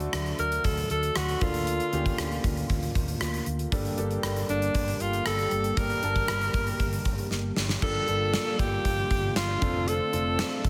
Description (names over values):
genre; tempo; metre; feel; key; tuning
1980s-style pop; 117 BPM; 4/4; straight; unclear; A4 = 440 Hz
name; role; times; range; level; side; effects
clear concert grand piano; accompaniment; 0.0-10.7 s; G2 to A5; -38 LUFS; equal; none
warm analog pad; sustained chords; 0.0-10.7 s; D3 to G4; -37 LUFS; equal; chorus
mellow fretless electric bass; bass; 0.0-10.7 s; F1 to D2; -34 LUFS; equal; none
gated 80s drum kit; drums; 0.0-10.7 s; crash cymbal, hi-hat, kick drum, rim click, snare drum; -32 LUFS; equal; none
bright alto saxophone; melody; 0.4-10.6 s; D4 to Bb4; -31 LUFS; equal; delay
room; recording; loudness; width
light reverb; none; -27 LUFS; mono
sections
0.0-7.8 A section; 7.8-10.7 B section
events
drum fill 7.3-7.8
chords
0.0 D; 1.4 Bbmaj7/D; 3.7 Gmadd9; 7.8 Gm7; 9.6 Dm7/F